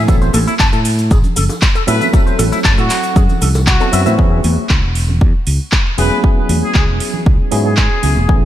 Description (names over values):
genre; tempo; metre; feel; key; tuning
nu-disco, nu disco; 117 BPM; 4/4; straight; E major; A4 = 441 Hz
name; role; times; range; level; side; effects
electric guitar with an envelope filter; riff; 0.0-4.1 s; E4 to A5; -21 LUFS; left 3 dB; wide subtle chorus, analog delay
fingered electric bass; bass; 0.0-8.4 s; E1 to A2; -15 LUFS; equal; sidechain pumping
tine electric piano; accompaniment; 0.1-8.4 s; F#3 to C5; -20 LUFS; right 1 dB; overdrive, fast stereo tremolo, sidechain pumping, analog delay
electronic kick drum; drums; 0.1-8.4 s; none; -13 LUFS; equal; studio reverb
house drum kit; drums; 0.1-8.1 s; handclaps, hi-hat, shaker; -20 LUFS; equal; studio reverb
tambourine, bongos and congas; percussion; 0.1-8.3 s; none; -24 LUFS; equal; none
bright trumpet section; melody; 1.9-8.3 s; F#4 to B4; -22 LUFS; equal; diffuse ambient delay
room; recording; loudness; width
light reverb, digital ambience; none; -11 LUFS; side -12 dB against mid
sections
0.0-4.2 A section; 4.2-8.4 B section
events
drop 0.0-4.2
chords
0.0 Am6; 4.2 E6